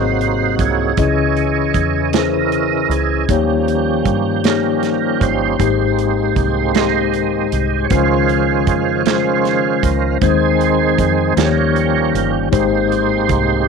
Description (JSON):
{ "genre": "slow gospel", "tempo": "52 BPM (dotted quarters)", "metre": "6/8", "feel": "straight", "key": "Ab major", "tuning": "A4 = 440 Hz", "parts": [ { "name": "mellow tine electric piano", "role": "accompaniment", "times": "0.0-13.7 s", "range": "Ab2 to Eb5", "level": "-17 LUFS", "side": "left 11 dB", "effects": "medium stereo tremolo" }, { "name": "tonewheel organ", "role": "sustained chords", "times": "0.0-13.7 s", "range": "C3 to Eb5", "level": "-18 LUFS", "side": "right 13 dB", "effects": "slow rotary speaker, overdrive, chorus vibrato" }, { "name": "deep dub fingered electric bass", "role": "bass", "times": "0.0-13.7 s", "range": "G1 to G2", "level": "-22 LUFS", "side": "right 1 dB", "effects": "none" }, { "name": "modern studio drum kit", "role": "drums", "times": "0.2-13.5 s", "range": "hi-hat, kick drum, snare drum", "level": "-20 LUFS", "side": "right 5 dB", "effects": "none" } ], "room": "light reverb", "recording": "1960s-style stereo with parts hard left and right", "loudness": "-13 LUFS", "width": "side -5 dB against mid", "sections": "0.0-13.7 A section", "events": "tonewheel organ solo 0.0-13.7", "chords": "0.0 Ab7; 1.0 Dbmadd9; 3.3 Eb7; 5.6 Abmaj7; 7.9 Dbmaj7; 10.2 Ab/Eb; 11.4 Eb7; 12.5 Abmaj7" }